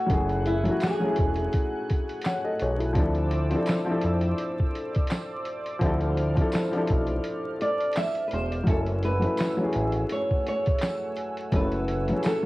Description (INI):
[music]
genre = lo-fi hip hop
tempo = 84 BPM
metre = 4/4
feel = swing 58% on 16ths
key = unclear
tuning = A4 = 442 Hz
[part]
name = flamenco guitar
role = melody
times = 0.0-2.2, 7.6-12.5 s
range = E4 to E5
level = -29 LUFS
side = right 1 dB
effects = low-pass filter, cassette tape, tape echo
[part]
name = warm upright piano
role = accompaniment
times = 0.0-12.5 s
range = F3 to G#5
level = -28 LUFS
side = left 1 dB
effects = cassette tape, low-pass filter
[part]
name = lush unison pad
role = sustained chords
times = 0.0-12.5 s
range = A3 to F#6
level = -37 LUFS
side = right 1 dB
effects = chorus, low-pass filter, cassette tape
[part]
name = fat analog bass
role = bass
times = 0.1-12.1 s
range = E1 to F2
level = -27 LUFS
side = equal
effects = none
[part]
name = lo-fi sampler-style drum kit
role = drums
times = 0.1-12.4 s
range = handclaps, hi-hat, kick drum, snare drum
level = -27 LUFS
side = equal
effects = vintage 12-bit sampler grit, cassette tape
[part]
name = tambourine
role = percussion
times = 0.8-12.4 s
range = none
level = -49 LUFS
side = right 4 dB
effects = none
[sound]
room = moderate studio reverb, RT60 0.7 s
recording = home recording on cassette, vinyl crackle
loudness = -24 LUFS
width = side -19 dB against mid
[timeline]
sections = 0.0-12.5 A section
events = break 7.2-8.7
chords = 0.0 F#m9; 3.0 Dm9; 8.7 F#m9